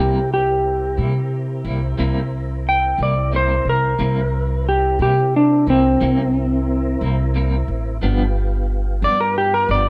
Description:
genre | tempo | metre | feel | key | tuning
slow blues | 60 BPM (dotted quarters) | 12/8 | straight | unclear | A4 = 442 Hz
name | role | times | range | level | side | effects
clean lap steel guitar | melody | 0.0-9.9 s | C4 to G5 | -20 LUFS | equal | none
clean electric guitar | accompaniment | 0.0-9.9 s | G2 to E4 | -30 LUFS | equal | tremolo
tonewheel organ | sustained chords | 0.0-9.9 s | B3 to Bb4 | -32 LUFS | equal | slow rotary speaker, overdrive, chorus vibrato
upright bass | bass | 0.0-9.9 s | G1 to C3 | -23 LUFS | equal | none
room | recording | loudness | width
light reverb | rough home demo mix | -19 LUFS | mono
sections
0.0-9.9 A section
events
electric slide guitar solo 0.0-9.9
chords
0.0 C7; 8.0 G7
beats
0.98 1.98 2.99 | 3.99 5.00 6.00 7.00 | 8.01 9.01

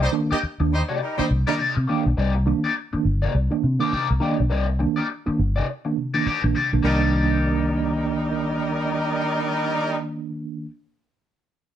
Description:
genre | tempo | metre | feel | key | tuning
funk | 103 BPM | 4/4 | swing 60% on 16ths | C minor | A4 = 440 Hz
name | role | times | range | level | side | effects
clear horn section | second line | 0.0-1.5, 6.8-9.9 s | G3 to Eb5 | -26 LUFS | equal | slapback echo
electric guitar at the edge of break-up | accompaniment | 0.0-10.7 s | Bb3 to D5 | -26 LUFS | left 5 dB | wah, analog chorus
vintage muted fingered electric bass | bass | 0.0-10.6 s | G1 to C3 | -22 LUFS | left 1 dB | none
mellow tine electric piano | stabs | 0.1-10.7 s | C3 to D4 | -25 LUFS | right 4 dB | medium stereo tremolo
room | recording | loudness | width
moderate studio reverb, RT60 0.7 s | none | -20 LUFS | side -10 dB against mid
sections
0.0-2.2 A section; 2.2-6.8 B section; 6.8-9.2 C section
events
none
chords
0.0 Cm9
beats
0.42 1.01 1.59 | 2.17 2.76 3.34 3.92 | 4.51 5.09 5.68 6.26 | 6.85 7.43 8.02 8.60

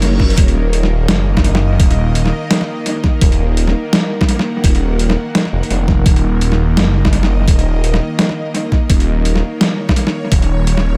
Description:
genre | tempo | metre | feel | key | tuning
half-time drum and bass | 169 BPM | 4/4 | swing 58% on 16ths, half-time | Eb minor | A4 = 441 Hz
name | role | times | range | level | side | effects
bowed-like drone | sustained chords | 0.0-11.0 s | Eb3 to Gb5 | -24 LUFS | equal | built-in reverb, vintage 12-bit sampler grit, sidechain pumping
phased detuned saw bass | bass | 0.0-11.0 s | Eb1 to Gb1 | -17 LUFS | equal | phaser
boom bap sampler-style drum kit | drums | 0.0-10.8 s | hi-hat, snare drum | -20 LUFS | equal | overdrive, small room ambience, analog delay
electronic kick drum | drums | 0.2-10.4 s | none | -15 LUFS | equal | overdrive, small room ambience
room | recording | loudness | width
little or no reverb | echo-heavy mix | -14 LUFS | mono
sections
0.0-11.0 A section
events
none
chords
0.0 Eb5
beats
0.02 | 0.38 0.73 1.09 1.44 | 1.80 2.15 2.51 2.86 | 3.22 3.58 3.93 4.29 | 4.64 5.00 5.35 5.71 | 6.06 6.42 6.77 7.12 | 7.48 7.83 8.19 8.54 | 8.90 9.26 9.61 9.96 | 10.32 10.68

